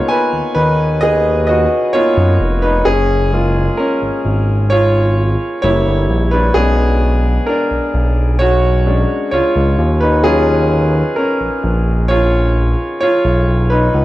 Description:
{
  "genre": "contemporary R&B",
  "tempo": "65 BPM",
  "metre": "4/4",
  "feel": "straight",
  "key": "unclear",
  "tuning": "A4 = 436 Hz",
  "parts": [
    { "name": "clear concert grand piano", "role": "accompaniment", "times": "0.0-14.0 s", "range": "F#3 to G#5", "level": "-14 LUFS", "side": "equal", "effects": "none" },
    { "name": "smooth synth bass", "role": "bass", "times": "0.3-14.0 s", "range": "E#1 to F#2", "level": "-14 LUFS", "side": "equal", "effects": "none" }
  ],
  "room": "light reverb, small room reverb",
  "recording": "dry, gritty hardware recording, cassette tape",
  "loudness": "-12 LUFS",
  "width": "side -16 dB against mid",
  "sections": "0.0-14.0 A section",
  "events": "grand piano solo 0.0-14.0",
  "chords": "0.0 C#13; 2.9 F#maj9; 5.6 F#7b9; 6.6 Bm6; 9.8 D#m9"
}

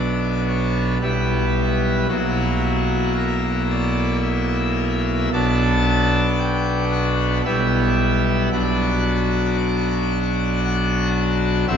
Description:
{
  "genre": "classical, chorale-style piece for pipe organ",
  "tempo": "56 BPM",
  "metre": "3/4",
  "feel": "straight",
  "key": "B minor",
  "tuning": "A4 = 439 Hz",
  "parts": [
    { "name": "pipe organ, full organ", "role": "solo", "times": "0.0-11.8 s", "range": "A1 to A5", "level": "-18 LUFS", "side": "equal", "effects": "none" }
  ],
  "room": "wet church reverb, RT60 3.1 s",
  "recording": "recorded in a church or concert hall, nothing above 8.0 kHz",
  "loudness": "-18 LUFS",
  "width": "side -7 dB against mid",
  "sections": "0.0-11.8 A section",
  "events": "none",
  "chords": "0.0 Bm; 1.0 Em/B; 2.1 F#7/B; 5.3 Bm; 7.5 Em/B; 8.5 Bm"
}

